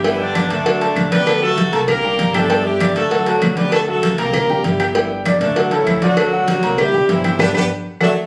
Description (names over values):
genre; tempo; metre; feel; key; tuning
latin, salsa; 196 BPM; 4/4; straight; D major; A4 = 440 Hz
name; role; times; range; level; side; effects
brilliant horn section; melody; 0.0-8.1 s; D3 to B4; -21 LUFS; equal; none
bright baby grand piano; accompaniment; 0.0-8.1 s; F#3 to G6; -22 LUFS; equal; none
upright bass; bass; 0.0-8.1 s; G1 to D2; -28 LUFS; equal; none
cowbell; percussion; 0.0-8.1 s; none; -25 LUFS; equal; none
congas; percussion; 0.1-8.1 s; none; -24 LUFS; equal; none
claves; percussion; 0.4-8.1 s; none; -28 LUFS; equal; none
room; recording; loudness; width
moderate large studio reverb, RT60 1.0 s; recorded on a phone in the room, studio reverb; -16 LUFS; mono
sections
0.0-8.3 A section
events
band accent 7.4-8.3; drum fill 8.0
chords
0.0 G; 0.7 D; 1.9 C5; 2.5 G5; 3.1 D; 4.3 C7; 5.0 G; 5.6 D; 6.8 C7; 7.4 G